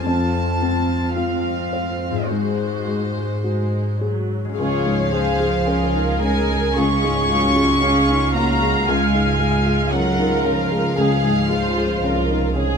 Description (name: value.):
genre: cinematic, emotional film score for orchestra.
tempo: 52-58 BPM.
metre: 4/4.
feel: rubato.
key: Db major from 4.6 s.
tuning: A4 = 440 Hz.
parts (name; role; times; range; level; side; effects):
warm symphonic violin section; melody; 0.0-12.6 s; C5 to Db6; -25 LUFS; left 2 dB; none.
felt-muted upright piano; accompaniment; 0.0-12.8 s; Db2 to C5; -23 LUFS; left 2 dB; none.
concert harp; arpeggios; 0.0-8.4 s; F2 to Ab4; -29 LUFS; left 11 dB; none.
warm symphonic cello section; bass; 0.0-12.5 s; F2 to Db4; -25 LUFS; right 1 dB; none.
dark symphonic viola section; accompaniment; 0.1-12.8 s; Gb3 to F5; -25 LUFS; right 2 dB; none.
warm symphonic violin section; second line; 4.6-12.8 s; F4 to Bb4; -25 LUFS; right 1 dB; none.
dark symphonic double bass section; bass; 4.6-12.8 s; C2 to Db2; -24 LUFS; right 3 dB; none.
room: light reverb.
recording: close, detailed microphones.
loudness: -17 LUFS.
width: side -6 dB against mid.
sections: 0.0-4.6 A section; 4.6-12.8 B section.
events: none.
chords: 0.1 F; 2.3 Ab7; 4.6 Db.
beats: | 0.06 1.16 2.29 3.44 | 4.58 5.66 6.78 7.82 | 8.88 9.92 10.98 12.04.